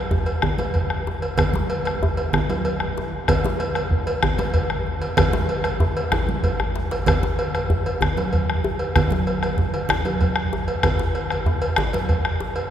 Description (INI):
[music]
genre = west african traditional, West African drum ensemble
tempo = 127 BPM (dotted quarters)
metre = 12/8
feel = straight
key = none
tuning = none
[part]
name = bombo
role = percussion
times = 0.1-12.4 s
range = none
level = -22 LUFS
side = equal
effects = none
[part]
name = djembe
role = percussion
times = 0.1-12.5 s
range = none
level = -28 LUFS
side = left 1 dB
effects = none
[part]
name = congas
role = percussion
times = 0.3-12.1 s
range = none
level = -26 LUFS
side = right 3 dB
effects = none
[part]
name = cowbell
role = percussion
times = 0.3-12.7 s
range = none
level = -27 LUFS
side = equal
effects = none
[sound]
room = wet cathedral reverb, RT60 5.8 s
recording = recorded in a church or concert hall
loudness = -19 LUFS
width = side -10 dB against mid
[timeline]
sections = 0.0-12.7 A section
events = drum fill 6.3-7.1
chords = none